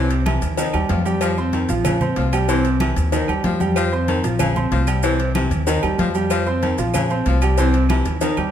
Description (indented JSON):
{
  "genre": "latin, salsa",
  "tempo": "189 BPM",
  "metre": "4/4",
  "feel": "straight",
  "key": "unclear",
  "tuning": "A4 = 437 Hz",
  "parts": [
    { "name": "bright baritone saxophone", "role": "second line", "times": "0.0-8.4 s", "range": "C3 to F3", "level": "-26 LUFS", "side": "left 5 dB", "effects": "none" },
    { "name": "clear concert grand piano", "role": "accompaniment", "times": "0.0-8.5 s", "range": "C3 to C6", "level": "-22 LUFS", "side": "right 3 dB", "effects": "none" },
    { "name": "upright bass", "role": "bass", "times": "0.0-8.5 s", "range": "Bb1 to F2", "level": "-21 LUFS", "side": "left 1 dB", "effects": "none" },
    { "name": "congas", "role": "percussion", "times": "0.1-8.5 s", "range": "none", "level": "-27 LUFS", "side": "left 1 dB", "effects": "none" },
    { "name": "cowbell", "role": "percussion", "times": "0.1-8.4 s", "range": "none", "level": "-29 LUFS", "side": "left 8 dB", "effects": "none" },
    { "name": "maracas", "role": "percussion", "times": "0.1-8.5 s", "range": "none", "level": "-36 LUFS", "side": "right 7 dB", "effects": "none" },
    { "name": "claves", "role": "percussion", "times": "0.3-8.5 s", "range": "none", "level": "-36 LUFS", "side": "right 8 dB", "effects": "none" },
    { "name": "timbales and agogo bells", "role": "percussion", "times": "0.3-8.5 s", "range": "none", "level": "-28 LUFS", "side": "right 5 dB", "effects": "none" }
  ],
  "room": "wet large studio reverb, RT60 1.3 s",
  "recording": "none",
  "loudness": "-17 LUFS",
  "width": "side -10 dB against mid",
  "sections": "0.0-8.5 A section",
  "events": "drum fill 8.2",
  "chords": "0.0 C; 0.6 Eb; 1.2 Fsus2; 2.5 C; 3.1 Eb; 3.8 Fsus2; 5.0 C; 5.7 Eb; 6.3 Fsus2; 7.6 C"
}